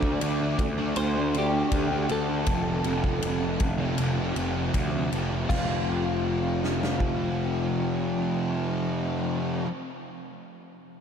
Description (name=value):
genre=rock, shoegaze and dream pop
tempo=80 BPM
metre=4/4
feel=straight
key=F major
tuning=A4 = 440 Hz
part: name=twelve-string electric guitar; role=melody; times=0.0-9.6 s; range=F4 to D5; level=-33 LUFS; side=left 1 dB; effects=analog chorus, ping-pong delay
part: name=thick fuzz guitar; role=riff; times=0.0-9.7 s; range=F2 to D4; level=-28 LUFS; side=equal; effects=distortion, ensemble chorus
part: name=fuzz picked electric bass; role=bass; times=0.0-9.6 s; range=F1 to D2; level=-29 LUFS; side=equal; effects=overdrive
part: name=big rock drum kit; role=drums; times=0.0-7.2 s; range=crash cymbal, kick drum, ride cymbal, snare drum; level=-31 LUFS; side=equal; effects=none
room=moderate huge ambient reverb, RT60 4.7 s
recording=dreamy mix soaked in reverb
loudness=-24 LUFS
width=side -7 dB against mid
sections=0.0-5.5 A section; 5.5-8.5 B section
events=none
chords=0.0 D5; 2.5 F; 5.5 F5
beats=0.21 0.96 1.72 | 2.47 3.23 3.98 4.74 | 5.49 6.24 7.00 7.75